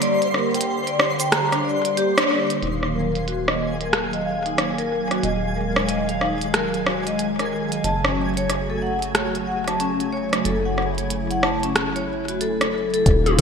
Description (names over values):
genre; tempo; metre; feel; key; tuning
IDM; 92 BPM; 4/4; swing 62% on 16ths; unclear; A4 = 440 Hz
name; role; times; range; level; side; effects
hollow soft pad; sustained chords; 0.0-13.4 s; Db3 to F5; -26 LUFS; right 2 dB; ensemble chorus, sidechain pumping
vibraphone with medium mallets; arpeggios; 0.0-13.4 s; Db4 to Bb5; -24 LUFS; left 3 dB; low-pass filter, ping-pong delay
glitchy drum kit; drums; 0.0-13.4 s; cabasa, hi-hat, rim click, toms; -24 LUFS; equal; overdrive, low-pass filter on hats, low-pass filter on snare, low-pass filter on perc, low-pass filter on toms, low-pass filter on room, gated reverb
twinkling granular texture; texture; 0.0-13.1 s; Ab4 to C6; -31 LUFS; equal; built-in reverb, analog chorus
deep acid bass; bass; 2.6-13.4 s; Eb1 to Gb1; -29 LUFS; equal; tube saturation
electronic kick drum; drums; 13.1-13.4 s; none; -17 LUFS; equal; overdrive
room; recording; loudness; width
wet lush hall reverb, RT60 1.8 s; bright 1980s-style digital production, faint mains hum; -19 LUFS; side -6 dB against mid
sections
0.0-2.6 A section; 2.6-13.1 B section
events
break 0.0-2.6; band accent 2.1-2.5; filter sweep on vibraphone 2.6-13.1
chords
0.0 Gm; 2.6 Ebmadd9; 7.8 Gbm